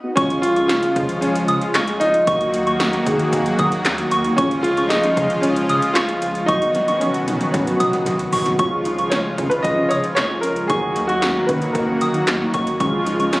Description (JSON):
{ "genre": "synth-pop", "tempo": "114 BPM", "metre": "4/4", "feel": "straight", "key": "Db mixolydian", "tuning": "A4 = 439 Hz", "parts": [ { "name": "mellow synth brass", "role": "accompaniment", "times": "0.0-13.4 s", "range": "Ab3 to Ab4", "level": "-26 LUFS", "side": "equal", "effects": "chorus, shimmer reverb" }, { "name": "warm grand piano", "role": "melody", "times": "0.2-12.5 s", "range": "Db4 to Eb5", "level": "-21 LUFS", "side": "equal", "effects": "shimmer reverb" }, { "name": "soft synth bell", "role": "second line", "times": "0.2-13.4 s", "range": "Db6 to Eb6", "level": "-24 LUFS", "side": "right 1 dB", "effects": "chorus, tremolo, slapback echo, shimmer reverb" }, { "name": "brassy analog pad", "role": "sustained chords", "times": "0.2-13.4 s", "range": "Db3 to Gb4", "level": "-22 LUFS", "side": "equal", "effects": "chorus, shimmer reverb" }, { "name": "rubbery square bass", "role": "bass", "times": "0.2-13.4 s", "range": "Cb2 to Eb3", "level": "-30 LUFS", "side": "equal", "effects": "none" }, { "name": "80s electronic pad drums", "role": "drums", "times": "0.2-13.4 s", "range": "handclaps, hi-hat, kick drum, snare drum, toms", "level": "-24 LUFS", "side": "equal", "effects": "gated reverb on snare and toms" }, { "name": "analog pluck", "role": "arpeggios", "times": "8.6-13.4 s", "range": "Db4 to Eb4", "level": "-30 LUFS", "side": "equal", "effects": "none" } ], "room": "wet lush hall reverb, RT60 1.5 s", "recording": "recorded on a phone in the room, club reverb", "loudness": "-16 LUFS", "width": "side -20 dB against mid", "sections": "0.0-8.6 A section; 8.6-13.4 B section", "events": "drum fill 6.5-8.6", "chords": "0.2 Db; 2.3 Ebm; 4.4 Db; 6.5 Cb; 8.6 Db; 10.7 Ebm; 12.8 Db" }